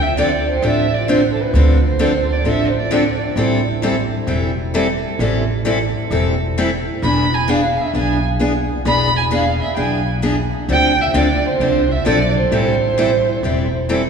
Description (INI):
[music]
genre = acoustic string swing (jazz manouche)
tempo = 131 BPM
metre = 4/4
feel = swing 65% on 8ths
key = A minor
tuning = A4 = 440 Hz
[part]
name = dark violin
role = melody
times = 0.0-3.2, 7.0-13.9 s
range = A4 to B5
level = -19 LUFS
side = right 3 dB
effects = none
[part]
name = upright bass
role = bass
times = 0.0-14.1 s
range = E1 to D2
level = -20 LUFS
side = right 1 dB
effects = none
[part]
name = picked steel-string acoustic guitar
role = accompaniment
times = 0.2-14.0 s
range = D3 to A4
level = -18 LUFS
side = left 1 dB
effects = none
[sound]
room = wet church reverb, RT60 3.6 s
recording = recorded in a church or concert hall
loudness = -14 LUFS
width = side -6 dB against mid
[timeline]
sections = 0.0-14.1 A section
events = none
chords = 0.0 Dm7; 3.4 Am7; 7.0 E7; 10.7 Dm7; 12.5 Am7